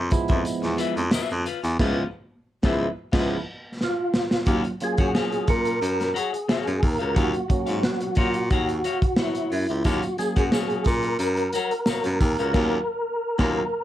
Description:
funk; 89 BPM; 4/4; straight; A4 = 440 Hz
bright baritone saxophone; bass; 0.0-13.6 s; Db2 to Bb2; -26 LUFS; equal
clean electric guitar; accompaniment; 0.1-13.6 s; F4 to Gb5; -30 LUFS; left 7 dB
barky tine electric piano; stabs; 0.1-13.6 s; F3 to Ab4; -28 LUFS; right 3 dB; overdrive, phaser
crunchy breakbeat drum kit; drums; 0.1-13.6 s; crash cymbal, hi-hat, kick drum, snare drum; -25 LUFS; equal
tambourine; percussion; 0.1-1.8, 9.9-12.4 s; -41 LUFS; left 2 dB
percussive tonewheel organ; melody; 3.8-13.8 s; Fb4 to Bb4; -26 LUFS; equal; chorus vibrato, fast rotary speaker, slapback echo
light reverb; dark, warm production; -21 LUFS; side -13 dB against mid
0.0-4.5 A section; 4.5-13.8 B section
band accent 1.8-4.5, 12.5-13.8; drum fill 3.8-4.5
0.0 Db7#9; 4.5 Ebm9
0.46 1.13 | 1.80 2.47 3.14 3.81 | 4.48 5.15 5.82 6.49 | 7.17 7.84 8.51 9.18 | 9.86 10.53 11.20 11.87 | 12.55 13.22

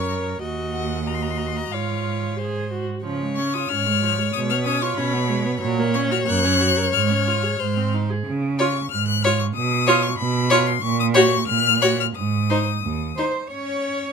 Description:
quick classical-period movement for string quartet; 92 BPM; 2/4; rubato; Db major; A4 = 441 Hz
rich violin; melody; 0.0-14.1 s; Db5 to Gb6; -24 LUFS; left 8 dB
clear violin; second line; 0.0-14.1 s; C5 to Eb5; -25 LUFS; left 6 dB
rich viola; accompaniment; 0.0-14.1 s; F3 to Bb4; -25 LUFS; right 2 dB
clear cello; bass; 0.0-14.1 s; Eb2 to Db5; -23 LUFS; right 5 dB
little or no reverb; close, detailed microphones; -19 LUFS; side -6 dB against mid
0.0-3.1 A section; 3.1-13.5 B section
0.4 Ebm; 1.7 Db/Ab; 2.4 Ab; 3.1 Db; 4.3 Db7/Cb; 5.6 Gb/Bb; 6.3 Gb; 6.9 Db/Ab; 7.6 Ab; 8.3 Db; 9.6 Db7/Cb; 10.8 Gb/Bb; 12.2 Ab; 13.5 N.C.
| 0.41 1.07 | 1.73 2.39 | 3.05 3.70 | 4.35 4.99 | 5.62 6.28 | 6.94 7.60 | 8.27 8.92 | 9.56 10.19 | 10.83 11.49 | 12.16 12.84 | 13.52

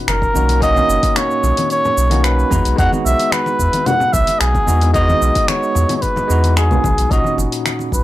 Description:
sunset chillout; 111 BPM; 4/4; straight; E lydian; A4 = 441 Hz
bell-like tine electric piano; accompaniment; 0.0-8.0 s; A#2 to F#4; -21 LUFS; equal; auto-pan
trumpet with cup mute; melody; 0.1-8.0 s; G#4 to F#5; -17 LUFS; equal; analog delay
warm sub bass; bass; 0.1-8.0 s; F#1 to E2; -16 LUFS; equal; tube saturation
deep house drum kit; drums; 0.1-8.0 s; cabasa, congas, finger snaps, hi-hat; -22 LUFS; left 1 dB
congas; percussion; 0.1-7.9 s; -27 LUFS; left 4 dB
electronic kick drum; drums; 0.2-8.0 s; -21 LUFS; equal
digital ambience; dry, gritty hardware recording, transformer saturation; -13 LUFS; side -15 dB against mid
0.0-8.0 A section
0.0 Bmaj9; 2.5 Emaj9; 7.1 Bmaj9
0.08 | 0.62 1.16 1.70 2.24 | 2.79 3.33 3.87 4.41 | 4.95 5.49 6.03 6.57 | 7.11 7.65

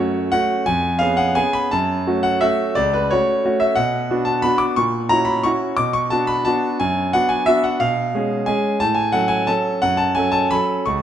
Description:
classical, piano waltz; 177 BPM; 3/4; uneven beats, rubato; F# minor; A4 = 440 Hz
clear concert grand piano; solo; 0.0-11.0 s; C#2 to D6; -16 LUFS; equal
moderate recital hall reverb, RT60 1.7 s; -16 LUFS; side -10 dB against mid
0.0-11.0 A section
0.0 F#m; 0.7 C#7/E#; 1.7 F#m; 3.8 Bm; 4.8 F#7/A#; 5.8 Bm; 7.8 C#7/B; 8.8 F#m/A; 9.8 F#m
0.33 | 0.67 1.01 1.37 | 1.73 2.08 2.43 | 2.77 3.12 3.45 | 3.78 4.10 4.45 | 4.78 5.11 5.45 | 5.79 6.11 6.45 | 6.79 7.12 7.45 | 7.79 8.11 8.46 | 8.79 9.13 9.48 | 9.82 10.16 10.52 | 10.86

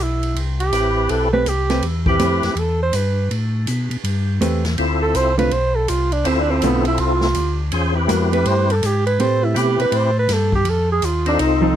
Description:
soul jazz organ trio; 163 BPM; 4/4; swing 64% on 8ths; A minor; A4 = 440 Hz
breathy alto saxophone; melody; 0.0-11.8 s; B3 to C5; -20 LUFS; right 3 dB
tonewheel organ; bass; 0.0-11.8 s; A1 to B2; -20 LUFS; left 1 dB; overdrive, slow rotary speaker
swinging big-band drum kit; drums; 0.2-11.5 s; hi-hat, kick drum, ride cymbal, snare drum; -28 LUFS; right 1 dB
percussive tonewheel organ; melody; 0.7-2.5, 4.8-11.7 s; C4 to C5; -21 LUFS; left 3 dB; slow rotary speaker, overdrive, chorus vibrato
vintage hollow-body jazz guitar; accompaniment; 1.3-11.7 s; D3 to B4; -21 LUFS; right 2 dB
little or no reverb; close, detailed microphones; -16 LUFS; side -10 dB against mid
0.0-11.8 A section
alto saxophone solo 0.0-11.8
0.0 Am9; 4.8 Dm7; 7.7 Am9; 10.7 F7
| 0.36 0.73 1.10 1.46 | 1.83 2.20 2.57 2.94 | 3.31 3.68 4.04 4.41 | 4.78 5.15 5.52 5.89 | 6.26 6.62 6.99 7.36 | 7.73 8.10 8.46 8.83 | 9.20 9.56 9.93 10.29 | 10.66 11.03 11.39 11.76

